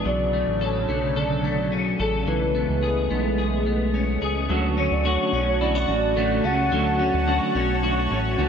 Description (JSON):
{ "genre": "dream pop", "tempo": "108 BPM", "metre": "4/4", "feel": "straight", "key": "unclear", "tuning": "A4 = 440 Hz", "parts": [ { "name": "warm analog pad", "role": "sustained chords", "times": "0.0-8.5 s", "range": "C#3 to C#6", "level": "-27 LUFS", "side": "equal", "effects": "chorus" }, { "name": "clean electric guitar", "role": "arpeggios", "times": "0.0-8.5 s", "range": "E3 to A4", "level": "-26 LUFS", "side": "left 4 dB", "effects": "ensemble chorus, ping-pong delay" }, { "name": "chorused synth bass", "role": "bass", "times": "0.0-8.5 s", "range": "A1 to D2", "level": "-26 LUFS", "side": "equal", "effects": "none" }, { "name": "warbly nostalgic lead", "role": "melody", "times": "0.1-7.6 s", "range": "A4 to F#5", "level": "-27 LUFS", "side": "right 1 dB", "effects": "chorus, tremolo, ping-pong delay" }, { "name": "electric guitar at the edge of break-up", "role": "accompaniment", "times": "4.5-8.5 s", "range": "D3 to F#4", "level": "-27 LUFS", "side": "right 4 dB", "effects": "tremolo, lush chorus" } ], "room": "moderate huge ambient reverb, RT60 7.0 s", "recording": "none", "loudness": "-20 LUFS", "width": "side -7 dB against mid", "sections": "0.0-4.5 A section; 4.5-8.5 B section", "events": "none", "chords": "0.1 Dmaj7; 2.3 Amaj9/B; 4.5 Dmaj7" }